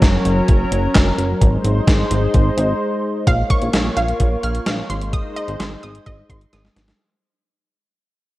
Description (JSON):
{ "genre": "synth-pop", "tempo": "129 BPM", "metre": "4/4", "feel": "straight", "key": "unclear", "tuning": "A4 = 437 Hz", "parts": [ { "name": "lush unison pad", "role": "sustained chords", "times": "0.0-7.0 s", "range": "Gb3 to Db5", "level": "-22 LUFS", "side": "equal", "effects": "chorus" }, { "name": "chorused synth bass", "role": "bass", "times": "0.0-6.9 s", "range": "Gb1 to Bb1", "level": "-20 LUFS", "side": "equal", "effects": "none" }, { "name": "gated 80s digital drum machine", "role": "drums", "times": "0.0-7.0 s", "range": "handclaps, hi-hat, kick drum, snare drum", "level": "-17 LUFS", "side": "equal", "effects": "gated reverb, gated reverb snare" }, { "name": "analog pluck", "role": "arpeggios", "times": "3.3-6.7 s", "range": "Eb5 to F6", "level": "-25 LUFS", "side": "right 2 dB", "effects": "chorus, tape echo" } ], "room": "moderate concert hall reverb, RT60 1.9 s, digital ambience", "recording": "worn, warbling old tape, cassette tape, warbly pitch drift", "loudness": "-15 LUFS", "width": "side -17 dB against mid", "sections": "0.0-3.3 A section; 3.3-7.0 B section", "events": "break 2.8-3.3; fade-out 3.3-7.0; drum fill 6.5-7.0", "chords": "0.0 Gb; 1.4 Ab; 3.3 Bbm; 4.9 Ab" }